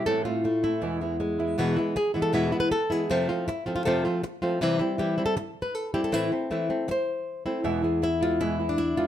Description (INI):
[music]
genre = flamenco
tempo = 158 BPM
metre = 4/4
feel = straight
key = unclear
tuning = A4 = 442 Hz
[part]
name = flamenco guitar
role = melody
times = 0.0-9.1 s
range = E2 to E5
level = -24 LUFS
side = left 1 dB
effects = plate reverb
[part]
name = flamenco guitar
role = stabs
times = 0.0-1.6, 7.6-9.1 s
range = E2 to E4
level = -31 LUFS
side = right 4 dB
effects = none
[sound]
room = light reverb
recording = close, detailed microphones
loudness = -24 LUFS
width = side -11 dB against mid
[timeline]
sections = 0.0-1.6 A section; 1.6-7.6 B section; 7.6-9.1 C section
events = none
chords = 0.1 Am; 0.8 E; 3.1 F; 4.6 C; 6.1 Am; 7.6 E